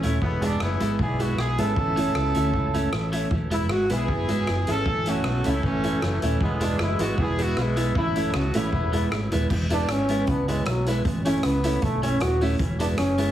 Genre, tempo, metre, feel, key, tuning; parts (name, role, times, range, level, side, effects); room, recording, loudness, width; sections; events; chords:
ska; 155 BPM; 4/4; swing 53% on 8ths; E major; A4 = 440 Hz
clean electric guitar; accompaniment; 0.0-13.3 s; G#3 to E4; -29 LUFS; right 3 dB; analog delay
dark upright piano; stabs; 0.0-13.3 s; E4 to E5; -33 LUFS; left 3 dB; analog delay, plate reverb
fingered electric bass; bass; 0.0-13.3 s; D#1 to D2; -27 LUFS; equal
street-band drum kit; drums; 0.0-13.3 s; crash cymbal, hi-hat, kick drum, rim click; -30 LUFS; equal
warm horn section; melody; 0.2-9.3 s; E3 to A4; -27 LUFS; equal; analog delay, plate reverb
electric guitar at the edge of break-up; riff; 3.3-13.1 s; D#3 to C#4; -33 LUFS; left 2 dB
bright trombone; melody; 9.7-13.3 s; F#3 to F#4; -26 LUFS; equal; analog delay, plate reverb
moderate studio reverb, RT60 0.7 s; heavily compressed radio sound, multiband compression, small room ambience; -21 LUFS; side -12 dB against mid
0.0-9.5 A section; 9.5-13.3 B section
trombone solo 9.5-13.3
0.2 E; 1.8 A; 3.3 E; 4.9 A; 6.4 E; 8.0 A; 8.7 E; 11.1 A; 12.6 E